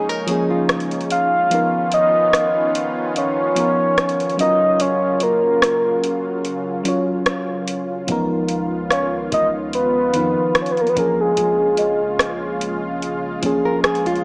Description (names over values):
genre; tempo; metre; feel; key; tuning
contemporary R&B; 73 BPM; 4/4; swing 54% on 16ths; unclear; A4 = 441 Hz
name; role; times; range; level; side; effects
mellow FM electric piano; accompaniment; 0.0-14.2 s; D#3 to C#5; -23 LUFS; equal; chorus
lush unison pad; sustained chords; 0.0-14.2 s; C#3 to E#4; -26 LUFS; equal; chorus
nylon-string guitar; arpeggios; 0.0-1.5, 13.7-14.2 s; E#4 to A#4; -22 LUFS; equal; none
booming analog drum machine; drums; 0.3-14.2 s; hi-hat, kick drum, rim click; -22 LUFS; equal; none
soft octave-layered synth lead; melody; 1.1-12.0 s; G#4 to E#5; -17 LUFS; equal; chorus, tape echo
long sustained 808-style bass; bass; 8.1-14.2 s; A#1 to E#2; -34 LUFS; equal; none
celesta; texture; 8.9-14.1 s; D#5 to E#5; -29 LUFS; equal; tape echo
room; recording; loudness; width
moderate lush hall reverb, RT60 2.2 s; small speaker sound; -16 LUFS; side -36 dB against mid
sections
0.0-14.2 A section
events
break 0.0-8.1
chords
0.0 A#m7; 1.5 C#13; 4.4 F#maj7; 8.1 C#13; 11.0 A#m7